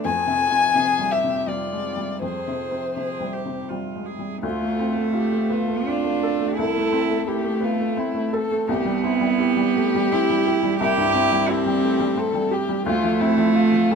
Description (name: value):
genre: neoclassical piano and strings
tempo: 80-88 BPM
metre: 3/4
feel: rubato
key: unclear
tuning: A4 = 441 Hz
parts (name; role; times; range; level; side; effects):
- dark violin; melody; 0.0-13.9 s; E4 to Ab5; -24 LUFS; left 4 dB; none
- warm cello; second line; 0.0-13.9 s; A3 to Ab4; -23 LUFS; right 5 dB; none
- felt-muted upright piano; accompaniment; 0.0-13.9 s; C2 to A4; -25 LUFS; left 2 dB; none
room: moderate studio reverb, RT60 0.7 s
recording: minimal, uncompressed stereo recording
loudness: -19 LUFS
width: side -6 dB against mid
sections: 0.0-4.4 A section; 4.4-13.9 B section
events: none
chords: 0.0 Fmadd9; 4.4 Dm7; 6.6 Am/C; 8.7 Cmaj7; 12.9 Dm7